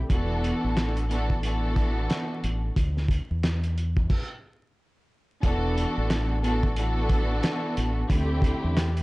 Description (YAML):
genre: hip hop, boom-bap hip-hop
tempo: 90 BPM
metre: 4/4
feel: swing 60% on 16ths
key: E minor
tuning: A4 = 440 Hz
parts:
  - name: deep dub fingered electric bass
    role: bass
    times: 0.0-9.0 s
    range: E1 to E2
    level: -27 LUFS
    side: equal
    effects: none
  - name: warm studio string section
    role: accompaniment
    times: 0.1-9.0 s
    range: D3 to A4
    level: -28 LUFS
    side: equal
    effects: high-pass filter, low-pass filter
  - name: cloth-damped thuddy drum kit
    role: drums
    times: 0.1-9.0 s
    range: crash cymbal, handclaps, hi-hat, kick drum, snare drum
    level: -27 LUFS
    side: equal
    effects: none
room: small room ambience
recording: dark, warm production, vinyl crackle, nothing above 10.6 kHz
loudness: -23 LUFS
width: side -21 dB against mid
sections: 0.0-5.4 A section; 5.4-9.0 B section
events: stop 4.1-5.4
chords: 0.1 E9sus4; 2.8 Dsus2; 5.4 E9sus4; 8.1 D9sus4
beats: | 0.10 0.77 1.43 2.10 | 2.77 3.43 4.10 4.76 | 5.43 6.10 6.76 7.43 | 8.10 8.77